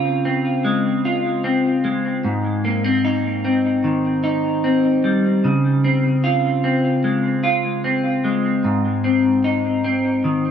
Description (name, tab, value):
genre	dream pop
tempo	75 BPM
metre	4/4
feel	straight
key	Ab major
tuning	A4 = 439 Hz
part	semi-hollow electric guitar	solo	0.0-10.5 s	Ab2 to F4	-16 LUFS	left 1 dB	lush chorus, tape echo
room	wet echo chamber reverb, RT60 2.1 s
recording	echo-heavy mix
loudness	-16 LUFS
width	side -8 dB against mid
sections	0.0-10.5 A section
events	none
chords	0.0 Dbmaj7; 2.2 Abmaj7; 5.4 Dbmaj7; 8.6 Ab